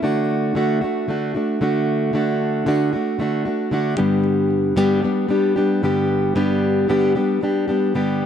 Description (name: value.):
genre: pop.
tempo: 114 BPM.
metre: 4/4.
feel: straight.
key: D major.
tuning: A4 = 440 Hz.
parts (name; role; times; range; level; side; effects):
fingerpicked plugged-in steel-string acoustic guitar; solo; 0.0-8.3 s; G2 to G4; -17 LUFS; equal; ping-pong delay.
room: light reverb.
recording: dark, warm production.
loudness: -17 LUFS.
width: side -8 dB against mid.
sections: 0.0-8.3 A section.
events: none.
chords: 0.0 D; 4.0 G.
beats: | 0.04 0.56 1.09 1.62 | 2.14 2.67 3.19 3.72 | 4.25 4.78 5.30 5.83 | 6.36 6.88 7.41 7.94.